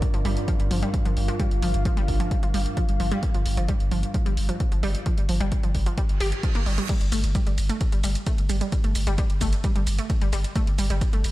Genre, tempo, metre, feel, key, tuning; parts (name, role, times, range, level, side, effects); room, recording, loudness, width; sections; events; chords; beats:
driving peak-time techno; 131 BPM; 4/4; straight; G minor; A4 = 440 Hz
metallic inharmonic drone; drone; 0.0-6.9 s; G2; -35 LUFS; equal; chorus, built-in reverb, sidechain pumping
electronic kick drum; drums; 0.0-11.1 s; -24 LUFS; equal; studio reverb
punchy analog drum machine; drums; 0.0-11.3 s; crash cymbal, hi-hat, ride cymbal, shaker; -36 LUFS; right 1 dB; sidechain pumping on hats, studio reverb, sidechain pumping on cymbals, sidechain pumping on perc
deep dark ambient pad; texture; 0.0-6.9 s; F4 to F5; -36 LUFS; left 1 dB; chorus, built-in reverb, sidechain pumping
analog pluck; riff; 0.1-11.2 s; F3 to G4; -30 LUFS; right 1 dB; chorus, tube saturation, vintage 12-bit sampler grit, sidechain pumping, tape echo
saturated sub bass; bass; 0.1-11.3 s; G1; -26 LUFS; equal; sidechain pumping, low-pass filter
reverse cymbal; sound effects; 6.1-6.9 s; -35 LUFS; right 5 dB
light reverb; -21 LUFS; side -17 dB against mid
0.0-6.9 A section; 6.9-11.3 B section
reverse cymbal 6.1-6.9; drop 6.9-11.3
0.0 Gm; 6.9 Gsus2
0.02 0.48 0.94 | 1.40 1.85 2.31 2.77 | 3.23 3.69 4.14 4.60 | 5.06 5.52 5.97 6.43 | 6.89 7.35 7.81 8.27 | 8.72 9.18 9.64 10.10 | 10.56 11.01